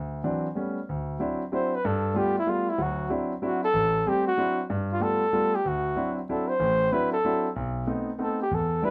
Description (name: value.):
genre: jazz.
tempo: 189 BPM.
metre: 3/4.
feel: swing 64% on 8ths.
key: D mixolydian.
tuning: A4 = 440 Hz.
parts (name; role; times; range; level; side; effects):
warm concert grand piano; accompaniment; 0.0-8.9 s; A1 to F4; -30 LUFS; equal; none.
trumpet with bucket mute; melody; 1.5-8.9 s; E4 to C5; -28 LUFS; equal; none.
room: light reverb.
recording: none.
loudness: -27 LUFS.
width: mono.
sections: 0.9-8.9 A section.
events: none.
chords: 0.0 D9; 0.6 A9; 0.9 D9; 1.8 G9; 2.8 D9; 3.7 Am7; 4.4 D9; 4.7 G9; 5.6 D9; 7.6 B7b9.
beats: 0.24 0.56 | 0.88 1.20 1.51 | 1.83 2.15 2.47 | 2.79 3.10 3.42 | 3.74 4.06 4.38 | 4.69 5.01 5.33 | 5.65 5.97 6.28 | 6.60 6.92 7.24 | 7.56 7.88 8.19 | 8.51 8.83.